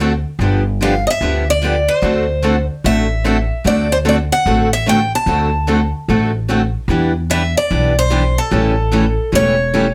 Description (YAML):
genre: acoustic string swing (jazz manouche)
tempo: 148 BPM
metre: 4/4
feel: swing 62% on 8ths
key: D mixolydian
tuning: A4 = 440 Hz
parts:
  - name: picked steel-string acoustic guitar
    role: accompaniment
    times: 0.0-9.9 s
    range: C#3 to A4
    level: -21 LUFS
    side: equal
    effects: none
  - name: picked steel-string acoustic guitar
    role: accompaniment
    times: 0.0-9.9 s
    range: D3 to B4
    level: -24 LUFS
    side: equal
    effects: none
  - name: upright bass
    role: bass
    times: 0.0-9.9 s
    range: E1 to E2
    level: -20 LUFS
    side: equal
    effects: none
  - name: picked steel-string acoustic guitar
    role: melody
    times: 0.8-9.9 s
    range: A4 to A5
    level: -20 LUFS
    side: equal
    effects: none
room: moderate studio ambience, RT60 0.5 s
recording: none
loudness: -16 LUFS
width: mono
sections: 0.0-9.9 A section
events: none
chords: 0.4 G7; 2.0 D7; 6.9 Em7; 8.5 A7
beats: 0.00 | 0.41 0.81 1.22 1.62 | 2.03 2.44 2.84 3.25 | 3.65 4.06 4.47 4.87 | 5.28 5.68 6.09 6.49 | 6.90 7.30 7.71 8.12 | 8.52 8.93 9.33 9.74